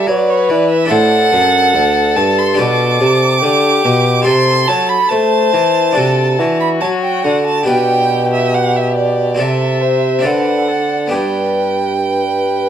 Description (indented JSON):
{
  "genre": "classical, baroque-style sonata movement with continuo",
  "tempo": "70 BPM",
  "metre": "4/4",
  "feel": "straight",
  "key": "G major",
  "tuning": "A4 = 438 Hz",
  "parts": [
    { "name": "warm violin", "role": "melody", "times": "0.0-12.7 s", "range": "F#4 to C5", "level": "-18 LUFS", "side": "left 8 dB", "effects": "none" },
    { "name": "rich violin", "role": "second line", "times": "0.0-12.7 s", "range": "C#5 to D6", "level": "-16 LUFS", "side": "right 4 dB", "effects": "none" },
    { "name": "harpsichord", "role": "accompaniment", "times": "0.0-12.7 s", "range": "D2 to D5", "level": "-19 LUFS", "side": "left 1 dB", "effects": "none" },
    { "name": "mellow bassoon", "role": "bass", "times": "0.0-12.7 s", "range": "D2 to A3", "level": "-16 LUFS", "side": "right 1 dB", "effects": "none" }
  ],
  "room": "moderate studio ambience, RT60 0.5 s",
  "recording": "dark, warm production",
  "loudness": "-11 LUFS",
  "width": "side -9 dB against mid",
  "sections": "0.0-12.7 A section",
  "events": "none",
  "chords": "0.0 D; 0.9 D7; 2.6 G/B; 4.3 Am7/C; 6.0 D7/C; 7.7 G/B; 9.4 Am7/C; 10.2 D7; 11.1 G"
}